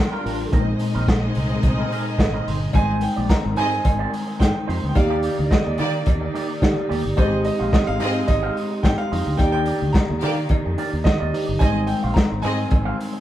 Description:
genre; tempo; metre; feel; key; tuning
disco; 108 BPM; 4/4; straight; unclear; A4 = 440 Hz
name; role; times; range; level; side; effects
warm symphonic violin section; second line; 0.0-12.7 s; Bb3 to G5; -29 LUFS; left 1 dB; none
mellow tine electric piano; accompaniment; 0.0-13.2 s; Bb2 to D5; -26 LUFS; left 1 dB; medium stereo tremolo
dark studio string section; sustained chords; 0.0-13.2 s; Eb3 to D5; -32 LUFS; equal; none
electric guitar with an envelope filter; accompaniment; 0.1-13.2 s; G3 to F5; -32 LUFS; right 4 dB; none
fingered electric bass; bass; 0.3-12.9 s; G1 to Eb3; -25 LUFS; equal; none
vintage drum kit; drums; 0.3-13.1 s; hi-hat, kick drum, snare drum; -20 LUFS; equal; none
clear grand piano; melody; 2.2-13.2 s; C5 to Bb5; -27 LUFS; right 2 dB; none
cowbell; percussion; 2.7-12.9 s; none; -33 LUFS; equal; none
room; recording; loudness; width
wet studio reverb, RT60 0.5 s; band playing live in one room; -18 LUFS; side -13 dB against mid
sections
0.0-2.7 A section; 2.7-13.2 B section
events
none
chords
0.0 Gm7; 0.5 Bb9sus4; 2.7 Abmaj7; 5.0 Ebmaj7; 7.2 Abmaj7; 9.4 Ebmaj7; 11.6 Abmaj7

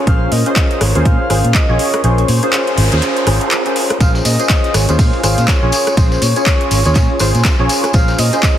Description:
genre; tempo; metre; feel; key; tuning
deep house; 122 BPM; 4/4; swing 59% on 16ths; Bb minor; A4 = 439 Hz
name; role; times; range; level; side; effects
percussive organ stab; stabs; 0.0-8.6 s; Db4 to Db5; -18 LUFS; equal; ensemble chorus, sidechain pumping
warbly tape-like pad; texture; 0.0-8.6 s; Db4 to F6; -25 LUFS; equal; chorus, built-in reverb, phaser, sidechain pumping
breathy flute-like synth lead; melody; 0.1-8.6 s; C5 to F5; -22 LUFS; equal; wide subtle chorus, ping-pong delay
fingered electric bass; bass; 0.1-8.3 s; Ab1 to Bb2; -15 LUFS; equal; sidechain pumping
deep house drum kit; drums; 0.1-8.5 s; handclaps, hi-hat, rim click; -20 LUFS; equal; overdrive, studio reverb
electronic kick drum; drums; 0.1-8.5 s; none; -13 LUFS; equal; overdrive, studio reverb
noise sweep; sound effects; 2.5-4.0 s; none; -24 LUFS; right 2 dB; none
breakbeat sampler-style drum kit; drums; 4.0-8.6 s; hi-hat, ride cymbal, snare drum; -28 LUFS; right 2 dB; sidechain pumping on cymbals, high-pass filter on cymbals, studio reverb, high-pass filter on snare, sidechain pumping on hats, high-pass filter on hats
tambourine; percussion; 4.0-8.5 s; none; -24 LUFS; left 3 dB; none
room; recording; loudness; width
light reverb, digital ambience; heavily compressed radio sound; -11 LUFS; side -11 dB against mid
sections
0.0-8.6 A section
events
kick drops out 2.0-4.0; noise sweep 2.5-4.0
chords
0.0 Bbm9

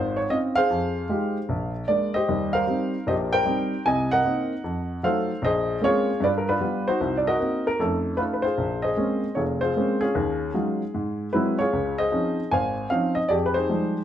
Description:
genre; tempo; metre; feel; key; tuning
solo jazz; 152 BPM; 4/4; swing 65% on 8ths; Bb minor; A4 = 441 Hz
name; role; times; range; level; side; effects
warm baby grand piano; solo; 0.0-14.0 s; F1 to Ab5; -22 LUFS; equal; none
room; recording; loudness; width
moderate large studio reverb, RT60 0.8 s; band playing live in one room; -22 LUFS; side -10 dB against mid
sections
0.0-8.6 A section; 8.6-14.0 A section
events
none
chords
0.0 Dbmaj9; 0.7 Fm9; 1.5 Bb7; 2.3 Eb6; 3.9 Cm7b5; 4.6 F7b9; 5.4 Bbm9; 6.2 G7; 7.0 Cm7b5; 7.8 F7alt; 8.6 Bbm9; 10.2 Ebm11; 10.9 Abaug7; 11.7 Dbmaj9; 13.3 Fm9

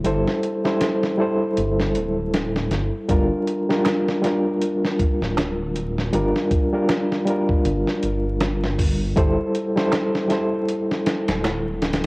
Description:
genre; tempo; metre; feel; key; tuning
trip hop; 79 BPM; 4/4; swing 58% on 16ths; G dorian; A4 = 441 Hz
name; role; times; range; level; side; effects
overdriven reed electric piano; accompaniment; 0.0-12.1 s; G3 to C5; -21 LUFS; equal; fast tremolo, cassette tape, tape echo
dark detuned saw bass; bass; 0.0-12.1 s; D1 to G1; -25 LUFS; equal; tube saturation
dusty soul sampler-style drum kit; drums; 0.0-12.1 s; hi-hat, kick drum, snare drum; -23 LUFS; equal; cassette tape
darbuka; percussion; 3.8-11.6 s; none; -32 LUFS; right 5 dB; none
room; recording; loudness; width
light reverb; home recording on cassette, vinyl crackle; -19 LUFS; side -25 dB against mid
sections
0.0-12.1 A section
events
none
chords
0.0 Am; 3.1 Gm7; 9.2 Am

